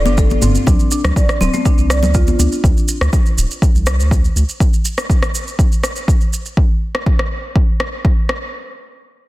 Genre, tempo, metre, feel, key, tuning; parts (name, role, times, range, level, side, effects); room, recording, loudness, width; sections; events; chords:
afro house; 122 BPM; 4/4; straight; D minor; A4 = 439 Hz
bright studio string section; sustained chords; 0.0-0.6 s; C3 to F4; -33 LUFS; equal; sidechain pumping
round analog bass; bass; 0.0-4.4 s; D1 to D2; -16 LUFS; equal; sidechain pumping
marimba with medium mallets; arpeggios; 0.1-2.5 s; A3 to D5; -21 LUFS; equal; sidechain pumping, low-pass filter, tape echo
congas; percussion; 0.1-2.5 s; -21 LUFS; left 3 dB
maracas; percussion; 0.1-6.5 s; -25 LUFS; right 4 dB
electronic kick drum; drums; 0.2-8.1 s; -14 LUFS; equal
deep house drum kit; drums; 0.4-8.4 s; rim click, toms; -23 LUFS; equal; soft clipping on snare
studio reverb; dense, heavily limited modern master; -13 LUFS; side -18 dB against mid
0.7-8.5 A section
0.0 G7sus4; 0.7 D7(no3); 4.6 N.C.